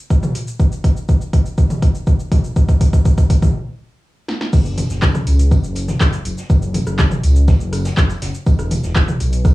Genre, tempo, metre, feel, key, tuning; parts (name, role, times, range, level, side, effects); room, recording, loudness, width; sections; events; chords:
melodic techno; 122 BPM; 4/4; straight; A4 = 440 Hz
deep house drum kit; drums; 0.1-9.5 s; crash cymbal, handclaps, hi-hat, rim click, shaker, snare drum, toms; -23 LUFS; equal; overdrive, cassette tape
electronic kick drum; drums; 0.1-9.5 s; -13 LUFS; equal; overdrive, cassette tape
dark detuned saw bass; bass; 4.5-9.5 s; E1 to C#2; -17 LUFS; equal; sidechain pumping
open jazz drum kit; drums; 4.5-9.5 s; hi-hat, snare drum, tambourine; -36 LUFS; right 1 dB; sidechain pumping on hats, high-pass filter on hats, cassette tape, high-pass filter on snare, sidechain pumping on perc, high-pass filter on perc, high-pass filter on room
little or no reverb; home recording on cassette, small room ambience; -14 LUFS; side -18 dB against mid
0.0-4.5 A section; 4.5-9.5 B section
build-up 0.0-4.5; drum fill 0.0-3.5, 4.3; stop 3.5-4.5; drop 4.5-9.5